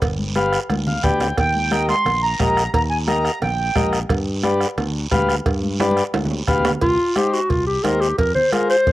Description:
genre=latin, cumbia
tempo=176 BPM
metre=4/4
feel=straight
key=unclear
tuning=A4 = 441 Hz
part: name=fingered electric bass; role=bass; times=0.0-8.9 s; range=G1 to G2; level=-24 LUFS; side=equal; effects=none
part: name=bombo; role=percussion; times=0.0-8.9 s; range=none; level=-25 LUFS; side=right 1 dB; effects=none
part: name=congas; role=percussion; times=0.0-8.9 s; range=none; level=-28 LUFS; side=left 1 dB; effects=none
part: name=cowbell and timbales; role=percussion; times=0.0-8.9 s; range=none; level=-28 LUFS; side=right 5 dB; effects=none
part: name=guiro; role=percussion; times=0.0-8.9 s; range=none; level=-32 LUFS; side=right 4 dB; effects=none
part: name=combo organ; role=accompaniment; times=0.4-8.8 s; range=Eb4 to G5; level=-22 LUFS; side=left 2 dB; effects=cassette tape, plate reverb
part: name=accordion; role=second line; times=1.4-3.9 s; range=G5 to C6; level=-20 LUFS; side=right 2 dB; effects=cassette tape, plate reverb
part: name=warm clarinet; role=melody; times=6.8-8.9 s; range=F4 to C5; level=-17 LUFS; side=equal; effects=cassette tape, plate reverb
room=moderate small room reverb, RT60 0.5 s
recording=home recording on cassette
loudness=-17 LUFS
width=side -16 dB against mid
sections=0.0-6.8 A section; 6.8-8.9 B section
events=accordion solo 0.0-6.8; drum fill 0.7-1.4, 5.8-6.8; transistor combo organ fill 0.7-1.4; clarinet solo 6.8-8.9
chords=0.0 G7; 1.4 Eb; 4.1 G7; 6.8 Cm; 8.2 Fm

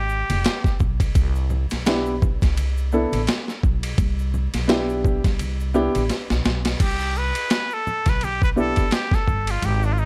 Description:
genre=hip hop, jazz-hop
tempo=85 BPM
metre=4/4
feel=swing 58% on 16ths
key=C major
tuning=A4 = 441 Hz
part: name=trumpet with straight mute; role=melody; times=0.0-0.8, 6.8-10.1 s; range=D4 to B4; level=-27 LUFS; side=equal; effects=none
part: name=upright bass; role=bass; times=0.0-10.1 s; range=F1 to C2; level=-26 LUFS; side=equal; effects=none
part: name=egg shaker and congas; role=percussion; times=0.1-10.1 s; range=none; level=-36 LUFS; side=equal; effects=none
part: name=boom bap sampler-style drum kit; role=drums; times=0.3-9.8 s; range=crash cymbal, hi-hat, kick drum, ride cymbal, snare drum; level=-25 LUFS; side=equal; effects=none
part: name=dark grand piano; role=accompaniment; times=1.9-8.8 s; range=B3 to A4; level=-25 LUFS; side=equal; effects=none
room=small room reverb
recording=none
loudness=-22 LUFS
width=mono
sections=0.0-6.8 A section; 6.8-10.1 B section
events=drum fill 6.1-6.8; muted trumpet solo 6.8-10.1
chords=0.0 Abmaj7(no3); 1.2 Cmaj9; 6.8 Cmaj7(no3)

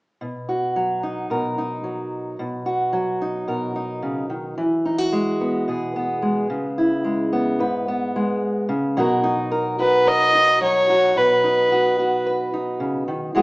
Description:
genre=folk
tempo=110 BPM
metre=4/4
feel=straight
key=B major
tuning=A4 = 440 Hz
part: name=fingerpicked steel-string acoustic guitar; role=accompaniment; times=0.2-13.4 s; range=G#2 to B4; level=-21 LUFS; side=equal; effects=none
part: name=dark fiddle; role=melody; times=9.8-12.3 s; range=B4 to D#5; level=-16 LUFS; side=equal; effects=none
room=wet large studio reverb, RT60 1.1 s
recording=band playing live in one room, small speaker sound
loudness=-18 LUFS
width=side -24 dB against mid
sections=0.2-9.0 A section; 9.0-13.4 B section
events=none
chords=0.2 Bmaj7; 4.6 Eadd9; 6.5 C#m7; 9.0 Bmaj7

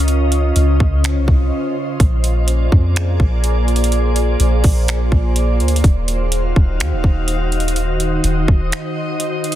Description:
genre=hip hop, atmospheric cloud-rap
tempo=125 BPM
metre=4/4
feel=half-time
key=Eb dorian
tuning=A4 = 441 Hz
part: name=glassy FM pad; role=sustained chords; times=0.0-9.6 s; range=Db3 to F5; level=-20 LUFS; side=equal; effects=ensemble chorus, built-in reverb, sidechain pumping
part: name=soft 808-style bass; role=bass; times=0.0-8.7 s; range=Eb1 to F2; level=-16 LUFS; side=equal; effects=none
part: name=trap drum kit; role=drums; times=0.0-9.6 s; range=finger snaps, hi-hat, kick drum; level=-16 LUFS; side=equal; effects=soft clipping on snare
room=little or no reverb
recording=dense, heavily limited modern master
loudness=-14 LUFS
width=side -12 dB against mid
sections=0.0-9.6 A section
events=break 1.5-2.0, 8.7-9.6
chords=0.0 Db; 2.0 Bb9; 5.8 Ebm69

